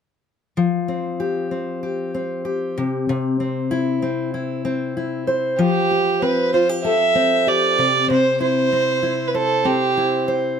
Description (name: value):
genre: acoustic pop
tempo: 96 BPM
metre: 4/4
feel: straight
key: C major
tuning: A4 = 440 Hz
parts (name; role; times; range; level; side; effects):
- fingerpicked steel-string acoustic guitar; accompaniment; 0.6-10.6 s; C3 to C5; -20 LUFS; left 3 dB; none
- warm violin; melody; 5.6-10.3 s; G4 to E5; -18 LUFS; right 4 dB; plate reverb
room: moderate studio reverb, RT60 0.6 s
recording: none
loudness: -18 LUFS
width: side -7 dB against mid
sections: 0.6-5.6 A section; 5.6-10.6 B section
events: none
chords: 0.6 Fsus2; 2.8 C; 5.6 Fadd9; 7.8 C